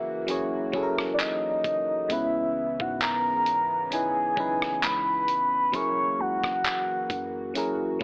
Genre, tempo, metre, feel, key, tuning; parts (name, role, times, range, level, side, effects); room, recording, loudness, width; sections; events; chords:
contemporary R&B; 66 BPM; 4/4; swing 54% on 16ths; A4 = 440 Hz
soft octave-layered synth lead; melody; 0.0-8.0 s; D5 to C#6; -26 LUFS; equal; chorus, tremolo, digital delay
FM electric piano; accompaniment; 0.0-8.0 s; C#3 to C#5; -30 LUFS; equal; chorus
chorused pulse-width pad; sustained chords; 0.0-8.0 s; C#3 to F#4; -37 LUFS; equal; sidechain pumping
soft 808-style bass; bass; 0.0-8.0 s; E1 to G#2; -44 LUFS; equal
dusty soul sampler-style drum kit; drums; 0.3-8.0 s; handclaps, hi-hat, kick drum, rim click; -29 LUFS; equal
light reverb, digital ambience; AM radio sound; -24 LUFS; side -30 dB against mid
0.0-8.0 A section
0.0 F#7; 2.1 C#m7; 5.7 F#7